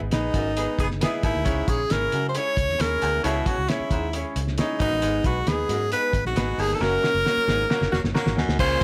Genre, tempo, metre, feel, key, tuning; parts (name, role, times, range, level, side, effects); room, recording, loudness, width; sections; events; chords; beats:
uptempo 1960s-style soul; 134 BPM; 4/4; straight; A4 = 440 Hz
bright grand piano; accompaniment; 0.0-8.8 s; G#2 to F5; -34 LUFS; equal
tonewheel organ; sustained chords; 0.0-8.6 s; F#3 to E4; -40 LUFS; equal
vintage muted fingered electric bass; bass; 0.0-8.8 s; E1 to C#3; -31 LUFS; equal
breathy tenor saxophone; melody; 0.1-8.8 s; D#4 to C#5; -27 LUFS; equal
cloth-damped thuddy drum kit; drums; 0.1-8.8 s; crash cymbal, hi-hat, kick drum, ride cymbal, snare drum; -29 LUFS; equal
warm baritone saxophone; riff; 0.3-8.8 s; D#2 to B2; -32 LUFS; equal
warm saxophone section; second line; 0.6-1.3, 7.7-8.5 s; A#3 to G#4; -33 LUFS; equal
light reverb; -24 LUFS; mono
0.0-8.6 A section
band accent 0.0-1.5, 6.8-8.6; drum fill 6.8-8.6
0.0 G#m; 1.5 C#m; 4.8 G#m; 6.8 F#
0.12 0.56 1.01 | 1.46 1.90 2.35 2.80 | 3.24 3.69 4.14 4.58 | 5.03 5.47 5.92 6.37 | 6.81 7.26 7.70 8.15 | 8.59